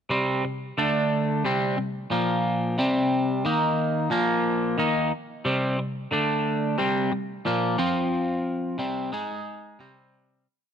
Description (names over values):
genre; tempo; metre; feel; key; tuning
rock; 90 BPM; 4/4; straight; C minor; A4 = 442 Hz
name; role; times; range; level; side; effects
twangy electric guitar; solo; 0.1-10.5 s; Bb2 to Ab4; -23 LUFS; equal; phaser
room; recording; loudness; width
light reverb, digital ambience; none; -23 LUFS; side -8 dB against mid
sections
0.0-10.5 riff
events
fade-out 7.8-10.5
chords
0.0 C5; 0.8 D5; 1.4 C5; 2.1 Bb5; 2.8 C5; 3.5 Eb5; 4.1 Bb5; 4.8 Cm; 6.1 D5; 6.8 C5; 7.8 F5; 8.8 C5; 9.1 Ab5; 9.8 C5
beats
0.44 1.11 1.78 | 2.45 3.12 3.79 4.46 | 5.12 5.79 6.46 7.12 | 7.79 8.46 9.13 9.80